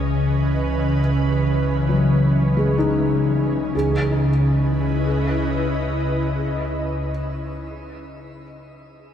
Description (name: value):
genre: ambient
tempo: 68 BPM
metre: 4/4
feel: straight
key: C# minor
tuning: A4 = 440 Hz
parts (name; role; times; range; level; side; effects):
- ethereal airy pad; sustained chords; 0.0-7.6 s; C#3 to D#5; -20 LUFS; equal; ensemble chorus, built-in reverb, shimmer reverb
- felt-muted upright piano; arpeggios; 0.0-9.1 s; F#3 to G#4; -27 LUFS; equal; diffuse ambient delay, shimmer reverb
- deep rumbling drone; bass; 0.0-6.3 s; C#2; -28 LUFS; equal; built-in reverb
room: wet cathedral reverb, RT60 5.7 s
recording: in a vast, echoing space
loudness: -18 LUFS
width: side -9 dB against mid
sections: 0.0-3.7 A section; 3.7-7.2 B section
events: none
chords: 0.0 C#m9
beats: | 0.17 1.05 1.93 2.83 | 3.74 4.62 5.49 6.35